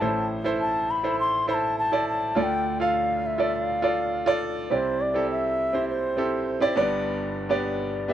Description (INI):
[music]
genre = pop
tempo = 102 BPM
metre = 4/4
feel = straight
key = unclear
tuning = A4 = 440 Hz
[part]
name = bansuri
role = melody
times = 0.0-6.7 s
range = C5 to C6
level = -25 LUFS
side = left 1 dB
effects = slapback echo
[part]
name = clear concert grand piano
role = accompaniment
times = 0.0-8.1 s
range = G1 to F5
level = -25 LUFS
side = right 1 dB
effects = none
[sound]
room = moderate booth ambience, RT60 0.2 s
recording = dry, close 1970s-style studio recording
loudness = -22 LUFS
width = side -11 dB against mid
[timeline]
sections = 0.0-4.7 A section; 4.7-8.1 B section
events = none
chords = 0.0 Am; 2.4 Dm; 4.7 Cadd9; 6.8 G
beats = | 0.01 0.60 1.19 1.77 | 2.36 2.95 3.53 4.12 | 4.71 5.30 5.88 6.47 | 7.06 7.65